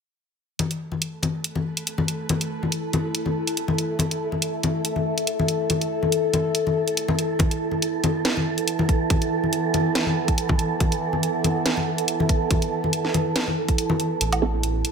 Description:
deep dubstep; 141 BPM; 4/4; swing 54% on 16ths, half-time; A4 = 440 Hz
overtone-sweeping drone; sustained chords; 2.1-14.9 s; E3 to B4; -26 LUFS; equal; chorus, built-in reverb
garage drum kit; drums; 0.6-14.9 s; hi-hat, snare drum, woodblock; -26 LUFS; right 1 dB; high-pass filter on hats, small room ambience, high-pass filter on snare, high-pass filter on perc
congas; percussion; 0.6-14.0 s; -26 LUFS; left 3 dB
wind-like tuned noise texture; texture; 1.3-14.9 s; A4; -30 LUFS; right 5 dB; built-in reverb
electronic kick drum; drums; 7.4-13.8 s; -22 LUFS; right 1 dB; small room ambience
dark detuned saw bass; bass; 14.2-14.8 s; A1; -24 LUFS; right 1 dB
filtered dub chord stab; stabs; 14.4-14.5 s; C4 to A4; -27 LUFS; right 6 dB; phaser, lush chorus
moderate digital room reverb, RT60 1.1 s; -21 LUFS; side -6 dB against mid
0.6-14.2 A section
kick drops out 13.8-14.2
0.6 A5; 7.4 Esus4; 14.2 Am
| 0.59 1.02 1.44 1.87 | 2.29 2.72 3.15 3.57 | 4.00 4.42 4.85 5.27 | 5.70 6.12 6.55 6.97 | 7.40 7.83 8.25 8.68 | 9.10 9.53 9.95 10.38 | 10.80 11.23 11.65 12.08 | 12.51 12.93 13.36 13.78 | 14.21 14.63

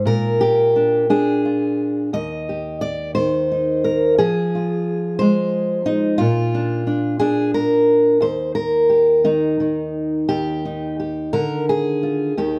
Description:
folk, solo fingerstyle acoustic guitar; 58 BPM (dotted quarters); 6/8; rubato; Eb major; A4 = 440 Hz
fingerpicked steel-string acoustic guitar; solo; 0.0-12.6 s; Eb2 to Eb5; -19 LUFS; equal
light reverb; dark, warm production; -19 LUFS; mono
0.0-10.3 A section; 10.3-12.6 B section
0.1 Bb; 2.1 Eb; 4.2 Fm; 6.2 Bb; 8.2 Eb; 11.3 Bbadd11
| 0.07 1.10 | 2.14 3.17 | 4.20 5.21 | 6.21 7.21 | 8.21 9.24 | 10.29 11.33 | 12.37

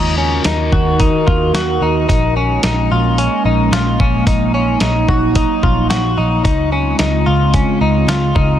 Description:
dream pop; 110 BPM; 4/4; straight; Db major; A4 = 443 Hz
warbly tape-like pad; sustained chords; 0.0-8.6 s; Db3 to Bb4; -18 LUFS; right 2 dB; chorus, built-in reverb
direct-recorded clean electric guitar; arpeggios; 0.0-8.6 s; Db4 to Gb4; -18 LUFS; left 3 dB; analog chorus, digital delay
vintage muted picked electric bass; bass; 0.0-8.6 s; Bb1 to Eb2; -17 LUFS; equal
dusty soul sampler-style drum kit; drums; 0.4-8.5 s; hi-hat, kick drum, snare drum; -17 LUFS; equal
light reverb, digital ambience; dense, heavily limited modern master; -12 LUFS; side -10 dB against mid
0.0-8.6 A section
0.0 Ebm; 2.1 Bbm7; 4.3 Gb6/Bb; 6.4 Dbmaj7
0.45 0.99 1.54 | 2.08 2.63 3.17 3.72 | 4.26 4.81 5.36 5.90 | 6.45 6.99 7.54 8.08

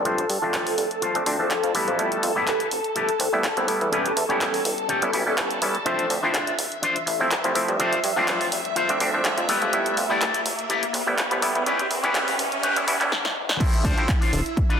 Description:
filtered disco house; 124 BPM; 4/4; swing 54% on 16ths; D dorian; A4 = 440 Hz
auto-wah clav; accompaniment; 0.0-14.1 s; F3 to E5; -25 LUFS; equal; phaser, sidechain pumping, low-pass filter
phased string machine; sustained chords; 0.0-14.8 s; E4 to A5; -28 LUFS; equal; ensemble chorus, phaser, sidechain pumping, low-pass filter
electric guitar with an envelope filter; riff; 0.0-14.8 s; C#4 to D5; -27 LUFS; left 2 dB; sidechain pumping, low-pass filter
plucky analog bass; bass; 0.0-14.4 s; D1 to G2; -29 LUFS; equal; sidechain pumping, high-pass filter, low-pass filter
punchy analog drum machine; drums; 0.1-14.8 s; crash cymbal, handclaps, hi-hat, snare drum; -27 LUFS; equal; sidechain pumping on hats, sidechain pumping on cymbals
riser and noise sweep; sound effects; 6.9-13.6 s; -32 LUFS; equal
electronic kick drum; drums; 13.6-14.7 s; -21 LUFS; equal
moderate plate reverb, RT60 1.8 s; dense, heavily limited modern master, high-pass filter; -20 LUFS; side -7 dB against mid
0.0-13.6 A section; 13.6-14.8 B section
build-up 0.0-13.6; filter sweep 0.0-13.6; riser 6.9-13.1; noise sweep 11.7-13.6; drum fill 13.1-13.6; stop 13.1-13.6; drop 13.6-14.8
0.1 G9sus4; 1.7 Fmaj9#11; 3.9 A9/E; 5.9 Dm7; 7.8 G9sus4; 9.5 Fmaj9#11; 11.7 Em6; 13.6 Dm7
| 0.06 0.54 1.02 1.51 | 1.99 2.47 2.96 3.44 | 3.93 4.41 4.89 5.38 | 5.86 6.34 6.83 7.31 | 7.80 8.28 8.77 9.25 | 9.73 10.22 10.70 11.18 | 11.67 12.15 12.64 13.12 | 13.60 14.09 14.57

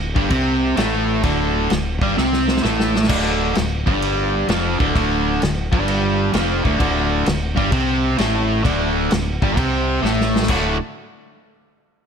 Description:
blues rock power trio and southern rock; 130 BPM; 4/4; swing 68% on 8ths; A4 = 440 Hz
cranked stack guitar; riff; 0.0-10.8 s; D2 to F#4; -19 LUFS; right 1 dB; overdrive
growling fingered electric bass; bass; 0.0-10.8 s; D1 to C2; -23 LUFS; equal; overdrive
vintage drum kit; drums; 0.2-10.6 s; crash cymbal, kick drum, snare drum; -22 LUFS; equal
light reverb, small room reverb; -16 LUFS; side -7 dB against mid
0.0-3.1 A section; 3.1-10.5 A section; 10.5-12.1 B section
drum fill 2.2-3.1, 10.0-10.5
0.0 D5; 10.5 D
0.32 0.78 | 1.25 1.71 2.17 2.63 | 3.10 3.56 4.02 4.49 | 4.95 5.41 5.87 6.34 | 6.80 7.26 7.72 8.19 | 8.65 9.11 9.57 10.04 | 10.50

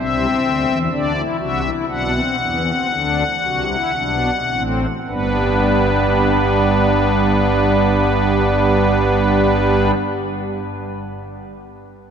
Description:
classical, baroque-style 3-part fugue for pipe organ; 52-65 BPM; 4/4; straight; G major; A4 = 438 Hz
pipe organ, strings celeste; solo; 0.0-9.9 s; G1 to F#5; -16 LUFS; equal
wet cathedral reverb, RT60 5.6 s; -15 LUFS; side -7 dB against mid
0.0-5.1 A section; 5.1-9.6 B section
slowing down 0.0-5.1
0.0 C; 0.9 D13; 2.9 D7; 5.1 G
| 0.92 1.89 2.90 3.96 | 5.07 6.21 7.34 8.48

